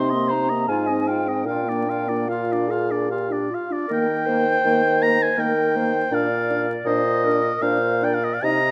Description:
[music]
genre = classical, slow romantic movement for wind quintet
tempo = 72-82 BPM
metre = 3/4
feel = rubato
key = Eb major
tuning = A4 = 441 Hz
[part]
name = mellow hollow silver concert flute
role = melody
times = 0.0-8.5 s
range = Bb4 to C6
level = -30 LUFS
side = equal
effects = none
[part]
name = warm oboe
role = second line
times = 0.0-8.7 s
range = C5 to Bb5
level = -26 LUFS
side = equal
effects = none
[part]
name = warm French horn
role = accompaniment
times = 0.0-8.6 s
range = Bb3 to Ab4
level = -30 LUFS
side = equal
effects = none
[part]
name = warm clarinet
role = accompaniment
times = 0.0-8.7 s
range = C4 to Eb5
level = -30 LUFS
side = equal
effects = none
[part]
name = mellow bassoon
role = bass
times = 0.0-8.7 s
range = Ab2 to Eb3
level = -26 LUFS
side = equal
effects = none
[sound]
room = light reverb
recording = close, detailed microphones, vinyl crackle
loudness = -21 LUFS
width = mono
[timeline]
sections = 0.0-3.9 A section; 3.9-8.7 B section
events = none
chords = 0.0 Cm7; 0.7 Fm7/Ab; 1.5 Bb; 3.9 Eb; 6.1 Bb

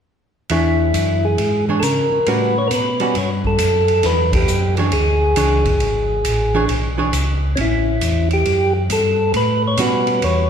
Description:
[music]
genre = soul jazz organ trio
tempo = 136 BPM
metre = 4/4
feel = swing 66% on 8ths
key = E mixolydian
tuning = A4 = 440 Hz
[part]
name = percussive tonewheel organ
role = melody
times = 0.5-10.5 s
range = C#4 to C#5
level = -18 LUFS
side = equal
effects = slow rotary speaker
[part]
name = archtop guitar, miked and amplified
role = accompaniment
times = 0.5-10.5 s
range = E3 to C#5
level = -23 LUFS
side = right 4 dB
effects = none
[part]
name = mellow tonewheel organ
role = bass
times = 0.5-10.5 s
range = G#1 to C#3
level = -19 LUFS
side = equal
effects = slow rotary speaker
[part]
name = swinging big-band drum kit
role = drums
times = 0.5-10.4 s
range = hi-hat, kick drum, ride cymbal, snare drum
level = -25 LUFS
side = right 1 dB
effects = none
[sound]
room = wet recital hall reverb, RT60 1.6 s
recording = recorded in a church or concert hall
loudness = -15 LUFS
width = side -7 dB against mid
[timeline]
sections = 0.5-10.5 A section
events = band accent 4.3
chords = 0.5 E13; 2.3 A13; 4.0 E13; 7.6 A13

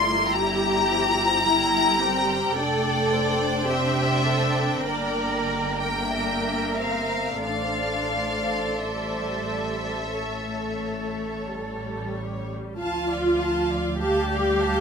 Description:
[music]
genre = classical, slow romantic movement for string orchestra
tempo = 43-54 BPM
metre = 4/4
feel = rubato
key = D minor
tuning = A4 = 439 Hz
[part]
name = rich studio violin section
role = melody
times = 0.0-11.5 s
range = D5 to C6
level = -26 LUFS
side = left 4 dB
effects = none
[part]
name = rich studio violin section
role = second line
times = 0.0-14.8 s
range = G4 to A5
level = -30 LUFS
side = right 2 dB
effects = none
[part]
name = rich studio viola section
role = accompaniment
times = 0.0-14.8 s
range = F3 to G4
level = -28 LUFS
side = equal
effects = none
[part]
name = dark studio cello section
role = bass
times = 0.0-14.8 s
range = F3 to Bb4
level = -30 LUFS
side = right 2 dB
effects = none
[part]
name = rich studio double bass section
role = bass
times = 0.0-14.8 s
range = F1 to D2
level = -31 LUFS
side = right 2 dB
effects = none
[sound]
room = light reverb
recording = none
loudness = -22 LUFS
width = side -6 dB against mid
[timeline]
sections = 0.0-12.8 A section; 12.8-14.8 A section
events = none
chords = 0.3 Edim/G; 2.6 Dm/F; 4.8 Em7b5/G; 7.4 Asus4; 10.1 A; 12.8 Dm

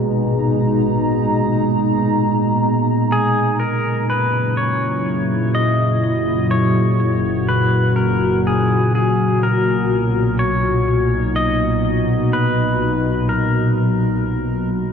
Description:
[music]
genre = ambient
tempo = 62 BPM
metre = 3/4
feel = straight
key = unclear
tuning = A4 = 440 Hz
[part]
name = warbly tape-like pad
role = sustained chords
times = 0.0-14.9 s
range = A#2 to A#5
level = -16 LUFS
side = equal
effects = chorus, built-in reverb
[part]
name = rich studio double bass section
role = bass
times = 0.0-14.9 s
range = F#1 to B1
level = -27 LUFS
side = equal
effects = none
[part]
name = pedal steel guitar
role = melody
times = 3.1-14.7 s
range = G#4 to D#5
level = -22 LUFS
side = left 1 dB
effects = ping-pong delay
[sound]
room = wet cathedral reverb, RT60 6.1 s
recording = none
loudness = -15 LUFS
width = side -7 dB against mid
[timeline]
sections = 0.0-3.6 A section; 3.6-14.9 B section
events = none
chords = 0.0 G#madd9; 3.6 F#7; 9.4 Bmaj7

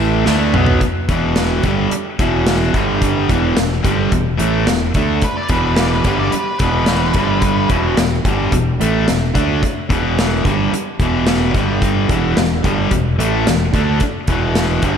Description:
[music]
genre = classic rock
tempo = 109 BPM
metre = 4/4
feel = straight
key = unclear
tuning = A4 = 439 Hz
[part]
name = bright tonewheel organ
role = sustained chords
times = 0.0-0.8 s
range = B3 to E5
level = -30 LUFS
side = right 1 dB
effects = none
[part]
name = crunchy overdriven guitar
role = riff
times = 0.0-15.0 s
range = E2 to D4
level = -20 LUFS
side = right 10 dB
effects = slapback echo
[part]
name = overdriven electric guitar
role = riff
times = 0.0-15.0 s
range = E2 to D4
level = -19 LUFS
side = left 7 dB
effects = none
[part]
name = growling fingered electric bass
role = bass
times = 0.0-15.0 s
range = E1 to D2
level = -20 LUFS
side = equal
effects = overdrive
[part]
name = big rock drum kit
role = drums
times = 0.3-15.0 s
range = hi-hat, kick drum, snare drum, toms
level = -19 LUFS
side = equal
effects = none
[part]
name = octave-fuzz lead guitar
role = second line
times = 5.2-7.7 s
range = B4 to D5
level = -22 LUFS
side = left 1 dB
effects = distortion, slapback echo
[sound]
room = moderate lush hall reverb, RT60 1.9 s, studio reverb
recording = big arena sound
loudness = -14 LUFS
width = side -7 dB against mid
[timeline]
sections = 0.8-15.0 A section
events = drum fill 0.3-0.8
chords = 0.3 E; 0.8 E5; 2.8 G5; 3.3 E5; 7.2 G5; 7.7 E5; 11.5 G5; 12.1 E5

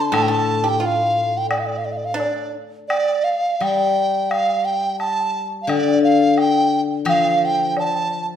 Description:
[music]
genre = chinese traditional, Chinese chamber ensemble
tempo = 86 BPM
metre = 2/4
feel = rubato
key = D yu mode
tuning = A4 = 440 Hz
[part]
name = mellow hollow large dizi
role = melody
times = 0.0-8.3 s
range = D5 to A5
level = -19 LUFS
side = right 2 dB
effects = none
[part]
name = pipa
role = second line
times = 0.0-2.5 s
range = D4 to C5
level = -26 LUFS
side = right 3 dB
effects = none
[part]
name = steel-string zither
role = accompaniment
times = 0.0-8.4 s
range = A2 to G3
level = -21 LUFS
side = left 6 dB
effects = none
[part]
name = woodblock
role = percussion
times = 0.1-7.9 s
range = none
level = -27 LUFS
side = left 1 dB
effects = none
[sound]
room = wet recital hall reverb, RT60 1.3 s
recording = none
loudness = -17 LUFS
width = side -9 dB against mid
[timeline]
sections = 0.0-2.9 A section; 2.9-8.4 B section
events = none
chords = none

